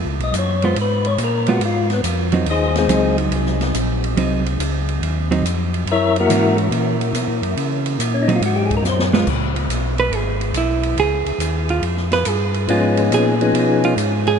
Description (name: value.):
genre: soul jazz organ trio.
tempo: 141 BPM.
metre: 4/4.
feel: swing 67% on 8ths.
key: Db mixolydian.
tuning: A4 = 440 Hz.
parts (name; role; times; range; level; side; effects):
mellow tonewheel organ; bass; 0.0-14.4 s; Ab1 to Db3; -21 LUFS; equal; overdrive, chorus vibrato, slow rotary speaker.
percussive tonewheel organ; melody; 0.2-3.2, 5.9-9.0, 12.7-14.0 s; F3 to Fb5; -21 LUFS; left 3 dB; slow rotary speaker.
open jazz drum kit; drums; 0.2-14.3 s; crash cymbal, hi-hat, kick drum, ride cymbal, snare drum; -26 LUFS; right 2 dB; none.
hollow-body jazz guitar; accompaniment; 0.6-14.4 s; Fb3 to Cb5; -22 LUFS; right 4 dB; none.
room: wet huge ambient reverb, RT60 8.2 s.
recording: in a vast, echoing space, nothing above 11.0 kHz.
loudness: -16 LUFS.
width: side -6 dB against mid.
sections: 0.0-9.3 A section; 9.3-14.4 A section.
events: tonewheel organ solo 0.0-9.3; drum fill 8.8-9.3; hollow-body jazz guitar solo 9.3-14.4.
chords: 0.0 Db7; 2.5 Ab7; 5.9 Gb7; 7.6 Bbmadd11; 8.4 Gbmaj7(b5, no3); 9.3 Db7.